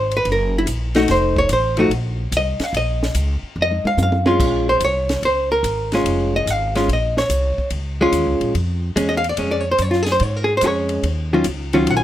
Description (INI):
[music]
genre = jazz, small-group swing and bop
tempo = 145 BPM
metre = 4/4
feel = swing 67% on 8ths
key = Bb minor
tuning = A4 = 440 Hz
[part]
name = vintage hollow-body jazz guitar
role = accompaniment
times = 0.0-12.0 s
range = Eb3 to Ab5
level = -18 LUFS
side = equal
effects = none
[part]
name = upright bass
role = bass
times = 0.0-12.0 s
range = F1 to Ab2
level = -22 LUFS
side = equal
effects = none
[part]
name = compact cocktail drum kit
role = drums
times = 0.1-12.0 s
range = crash cymbal, hi-hat, kick drum, ride cymbal, snare drum, toms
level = -27 LUFS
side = equal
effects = none
[sound]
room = small room reverb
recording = rough home demo mix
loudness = -16 LUFS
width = side -12 dB against mid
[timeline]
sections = 0.0-4.4 A section; 4.4-12.0 A section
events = drum fill 3.6-4.4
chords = 0.0 Gb; 1.1 F7; 2.7 Bbm; 3.6 Ebm11/F; 4.4 Bbm7; 11.0 Ebm9